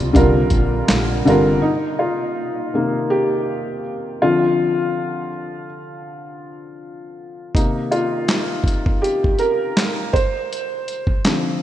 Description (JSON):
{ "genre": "lo-fi hip hop", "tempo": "81 BPM", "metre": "4/4", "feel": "swing 55% on 16ths", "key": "C minor", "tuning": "A4 = 440 Hz", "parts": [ { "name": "felt-muted upright piano", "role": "accompaniment", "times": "0.0-11.6 s", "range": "C3 to C5", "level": "-19 LUFS", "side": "equal", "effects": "cassette tape, low-pass filter" }, { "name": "granular cloud pad", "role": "sustained chords", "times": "0.0-1.6 s", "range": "C3 to Eb5", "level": "-30 LUFS", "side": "right 2 dB", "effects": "none" }, { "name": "upright bass", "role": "bass", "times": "0.0-1.6 s", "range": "G1 to C2", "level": "-20 LUFS", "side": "equal", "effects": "none" }, { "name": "dusty soul sampler-style drum kit", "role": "drums", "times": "0.0-1.5, 7.5-11.4 s", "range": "handclaps, hi-hat, kick drum, snare drum", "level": "-19 LUFS", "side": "equal", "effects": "vintage 12-bit sampler grit" } ], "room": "moderate lush hall reverb, RT60 2.9 s", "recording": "rough home demo mix", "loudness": "-17 LUFS", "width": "side -12 dB against mid", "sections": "0.0-1.6 A section; 1.6-11.6 B section", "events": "felt piano solo 1.6-11.6", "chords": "0.1 Cm7; 4.2 Dm7; 7.5 Cm7; 10.1 Dm7" }